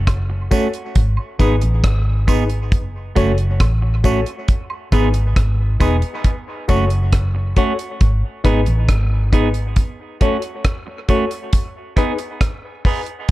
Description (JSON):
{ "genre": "dub reggae", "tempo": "68 BPM", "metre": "4/4", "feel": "straight", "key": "unclear", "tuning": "A4 = 440 Hz", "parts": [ { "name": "vintage muted fingered electric bass", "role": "bass", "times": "0.0-9.8 s", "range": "E1 to A1", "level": "-17 LUFS", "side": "equal", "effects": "none" }, { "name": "deep reggae drum kit", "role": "drums", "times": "0.1-13.3 s", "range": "hi-hat, kick drum, rim click", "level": "-17 LUFS", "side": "equal", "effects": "none" }, { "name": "woodblock and tambourine", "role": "percussion", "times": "0.1-6.9 s", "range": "none", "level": "-35 LUFS", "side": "right 4 dB", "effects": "high-pass filter on perc, dub echo" }, { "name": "clean electric guitar", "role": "accompaniment", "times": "0.3-13.0 s", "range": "A3 to G#4", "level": "-24 LUFS", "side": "right 6 dB", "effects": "high-pass filter, dub echo" }, { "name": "reed electric piano", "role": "stabs", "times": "0.5-13.1 s", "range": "D#4 to C#5", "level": "-25 LUFS", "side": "left 6 dB", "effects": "fast tremolo, high-pass filter, dub echo" } ], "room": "studio reverb", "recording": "dark, warm production", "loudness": "-15 LUFS", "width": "side -17 dB against mid", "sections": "0.0-13.3 A section", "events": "part muted 6.2-13.3; break 9.8-13.3; filter sweep 9.8-13.3", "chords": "0.0 F#m; 1.0 G#m; 2.7 F#m; 4.5 G#m; 6.2 F#m; 8.0 G#m; 9.8 F#m; 11.5 G#m", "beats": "0.07 0.95 1.84 | 2.72 3.60 4.48 5.36 | 6.24 7.12 8.01 8.89 | 9.77 10.65 11.53 12.41 | 13.29" }